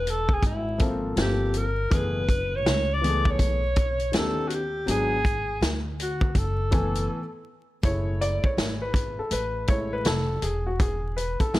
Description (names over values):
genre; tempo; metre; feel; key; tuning
hip hop, jazz-hop; 81 BPM; 4/4; swing 63% on 16ths; F# minor; A4 = 438 Hz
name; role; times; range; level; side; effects
breathy alto saxophone; melody; 0.0-7.5 s; E4 to D5; -28 LUFS; equal; slapback echo
upright bass; bass; 0.0-11.6 s; E1 to D#2; -29 LUFS; equal; none
vintage drum kit; drums; 0.1-11.6 s; hi-hat, kick drum, snare drum; -26 LUFS; equal; none
dark concert grand piano; accompaniment; 0.8-11.6 s; D#3 to G#5; -29 LUFS; left 1 dB; none
room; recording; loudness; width
small room ambience; vinyl crackle; -23 LUFS; side -16 dB against mid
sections
0.0-7.8 A section; 7.8-11.6 B section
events
break 7.1-7.8; grand piano solo 7.8-11.6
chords
0.0 Amaj7(no3); 1.2 Gm11; 1.9 F#m11; 4.1 D#aug7; 4.9 G#m7b5; 6.4 F#m11; 7.8 F#m7; 10.4 E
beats
0.43 1.17 | 1.91 2.65 3.39 4.13 | 4.87 5.62 6.36 7.10 | 7.84 8.58 9.32 10.06 | 10.80 11.54